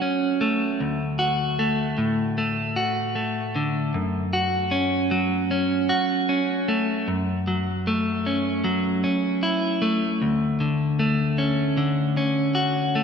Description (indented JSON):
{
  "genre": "rock",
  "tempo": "76 BPM",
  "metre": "4/4",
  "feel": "straight",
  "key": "unclear",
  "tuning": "A4 = 440 Hz",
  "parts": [
    { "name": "clean electric guitar", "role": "solo", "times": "0.0-13.0 s", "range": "D2 to F#4", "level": "-21 LUFS", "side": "equal", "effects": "analog delay" }
  ],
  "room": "wet lush hall reverb, RT60 1.8 s",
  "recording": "big arena sound",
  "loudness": "-21 LUFS",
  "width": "side -6 dB against mid",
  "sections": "0.0-7.1 A section; 7.1-13.0 B section",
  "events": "build-up 0.0-7.1",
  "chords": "0.0 F#m; 0.8 D; 3.9 F#m; 7.1 F#m7; 10.2 Dmaj7"
}